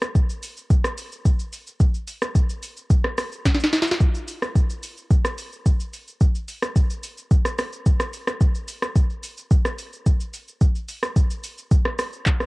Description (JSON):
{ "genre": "amapiano", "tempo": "109 BPM", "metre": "4/4", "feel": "straight", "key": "none", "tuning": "none", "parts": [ { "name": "smooth R&B drum kit", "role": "drums", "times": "0.0-12.5 s", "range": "handclaps, hi-hat, kick drum, rim click, shaker, snare drum", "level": "-19 LUFS", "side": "equal", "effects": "overdrive, cassette tape" } ], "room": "little or no reverb", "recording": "home recording on cassette", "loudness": "-20 LUFS", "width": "side -24 dB against mid", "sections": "0.0-12.5 A section", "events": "drum fill 3.5-4.0", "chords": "none" }